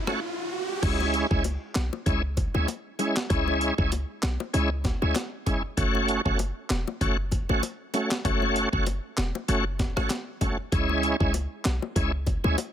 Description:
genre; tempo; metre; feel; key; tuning
dancehall; 97 BPM; 4/4; swing 56% on 16ths; unclear; A4 = 439 Hz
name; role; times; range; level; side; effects
riser; sound effects; 0.0-0.8 s; none; -33 LUFS; right 2 dB; none
bright tonewheel organ; accompaniment; 0.1-12.6 s; G#3 to F#4; -28 LUFS; equal; overdrive, chorus vibrato, slow rotary speaker
breakbeat sampler-style drum kit; drums; 0.1-12.7 s; crash cymbal, handclaps, hi-hat, kick drum, rim click, snare drum; -29 LUFS; equal; none
bongos; percussion; 0.1-12.7 s; none; -35 LUFS; left 9 dB; none
short 808-style bass; bass; 0.8-12.6 s; E1 to D2; -28 LUFS; equal; none
room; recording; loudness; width
little or no reverb; none; -24 LUFS; side -10 dB against mid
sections
0.8-12.7 A section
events
riser 0.0-0.8; break 0.2-0.8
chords
0.0 F#m; 0.8 C#m; 5.8 F#m; 10.7 C#m

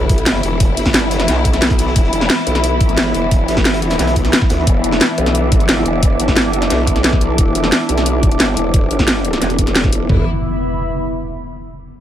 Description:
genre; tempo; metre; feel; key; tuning
dark technical drum and bass; 177 BPM; 4/4; straight; E minor; A4 = 439 Hz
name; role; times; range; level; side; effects
clear symphonic string section; sustained chords; 0.0-10.3 s; E3 to E4; -22 LUFS; left 2 dB; sidechain pumping, low-pass filter
growl bass; bass; 0.0-10.3 s; E1 to D2; -18 LUFS; equal; chorus, overdrive
impact; sound effects; 0.0-0.6, 10.1-11.4 s; none; -24 LUFS; equal; none
warbly tape-like pad; texture; 0.0-11.4 s; B3 to D6; -21 LUFS; equal; chorus, built-in reverb, sidechain pumping
crunchy breakbeat drum kit; drums; 0.1-4.7 s; hi-hat, snare drum; -31 LUFS; equal; none
drum and bass drum kit; drums; 0.1-10.2 s; kick drum, toms; -15 LUFS; equal; none
drum and bass drum kit; drums; 0.1-10.0 s; hi-hat, snare drum; -16 LUFS; equal; none
room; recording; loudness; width
light reverb, digital ambience; none; -12 LUFS; side -11 dB against mid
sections
0.0-10.1 A section; 10.1-11.4 B section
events
impact 0.0-0.6; filter sweep on string section 0.0-10.1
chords
0.0 E5

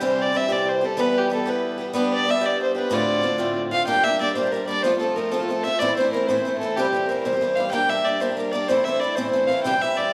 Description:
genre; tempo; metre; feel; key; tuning
celtic folk; 125 BPM (dotted quarters); 6/8; straight; D dorian, G dorian from 3.9 s; A4 = 440 Hz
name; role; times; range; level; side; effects
dark fiddle; melody; 0.0-10.1 s; G4 to G5; -24 LUFS; equal; none
picked swing-style acoustic guitar; accompaniment; 0.0-10.1 s; D2 to G4; -27 LUFS; equal; none
room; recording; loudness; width
wet recital hall reverb, RT60 1.5 s; recorded in a church or concert hall; -22 LUFS; mono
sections
0.0-3.9 A section; 3.9-10.1 B section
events
none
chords
0.0 C; 1.0 Em; 2.0 G; 2.9 Dm7; 3.9 Gm; 4.8 F; 5.8 Am; 6.8 C; 7.7 Gm; 8.7 Am

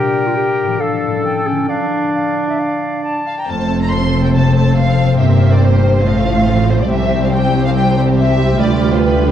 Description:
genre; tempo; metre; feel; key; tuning
classical, dramatic, fast romantic movement for symphony orchestra; 140 BPM; 4/4; straight; D minor, F major from 3.5 s; A4 = 440 Hz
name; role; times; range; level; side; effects
bright silver concert flute; second line; 0.0-3.5 s; E5 to Bb5; -23 LUFS; left 2 dB; none
clear clarinet; second line; 0.0-3.2 s; C#4 to A4; -19 LUFS; right 1 dB; none
clear oboe; second line; 0.0-3.2 s; A4 to D5; -22 LUFS; right 1 dB; none
concert harp; arpeggios; 0.0-9.3 s; F2 to D5; -17 LUFS; left 5 dB; none
warm symphonic violin section; melody; 3.3-9.3 s; B4 to C6; -20 LUFS; left 2 dB; none
warm symphonic violin section; second line; 3.5-9.3 s; F4 to C5; -22 LUFS; equal; none
rich symphonic viola section; accompaniment; 3.5-9.3 s; G3 to F4; -20 LUFS; right 2 dB; none
rich symphonic cello section; bass; 3.5-9.3 s; C2 to A2; -18 LUFS; right 3 dB; none
rich symphonic double bass section; bass; 3.5-9.3 s; F1 to D2; -18 LUFS; right 4 dB; none
room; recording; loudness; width
wet recital hall reverb, RT60 1.5 s; dark, warm production; -12 LUFS; side -10 dB against mid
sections
0.0-3.5 A section; 3.5-9.3 B section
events
none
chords
0.0 Gm/Bb; 0.8 Dm/A; 1.2 A7b9; 1.7 Dm; 3.5 F; 5.2 C5/G; 6.1 F/A; 6.9 C; 8.6 G7/D

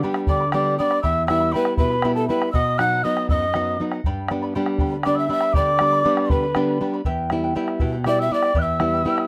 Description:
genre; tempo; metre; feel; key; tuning
andean folk, Andean ensemble; 80 BPM (dotted quarters); 6/8; straight; E minor; A4 = 436 Hz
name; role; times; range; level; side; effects
charango; accompaniment; 0.0-9.3 s; E4 to B5; -34 LUFS; equal; none
nylon-string guitar; accompaniment; 0.0-9.3 s; E2 to E4; -26 LUFS; equal; none
bombo; percussion; 0.0-9.3 s; none; -26 LUFS; equal; none
polished pan flute; melody; 0.3-9.3 s; A4 to F#5; -25 LUFS; equal; none
hollow quena; second line; 0.3-9.3 s; A5 to F#6; -26 LUFS; equal; none
room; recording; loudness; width
moderate studio reverb, RT60 0.5 s; rough home demo mix; -21 LUFS; mono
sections
0.0-9.3 A section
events
none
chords
0.0 G; 1.0 Em; 2.5 B; 4.0 G; 7.0 Em

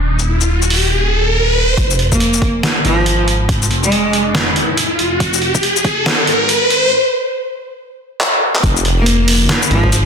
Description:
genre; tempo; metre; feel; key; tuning
deep dubstep; 140 BPM; 4/4; swing 61% on 16ths, half-time; F minor; A4 = 439 Hz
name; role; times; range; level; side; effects
dark detuned saw bass; bass; 0.0-10.1 s; Eb1 to Ab1; -18 LUFS; equal; none
riser; sound effects; 0.0-6.9 s; none; -16 LUFS; equal; none
trip hop sampler-style drum kit; drums; 0.2-10.0 s; handclaps, hi-hat, shaker, snare drum; -16 LUFS; equal; none
electronic kick drum; drums; 1.8-6.0, 8.6-9.9 s; none; -18 LUFS; equal; overdrive
clear cello; melody; 2.1-4.1, 9.0-10.1 s; F3 to Bb3; -17 LUFS; equal; dub echo
room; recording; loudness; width
light reverb, digital ambience; dense, heavily limited modern master, high-pass filter, low-pass filter; -12 LUFS; side -6 dB against mid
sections
0.0-1.8 A section; 1.8-8.6 B section; 8.6-10.1 C section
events
riser 0.0-1.8, 1.8-6.9; filter sweep 0.0-1.8; build-up 1.8-8.6; break 6.9-8.6; drum fill 8.2-8.6; drop 8.6-10.1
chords
0.0 Eb5; 1.8 Fm

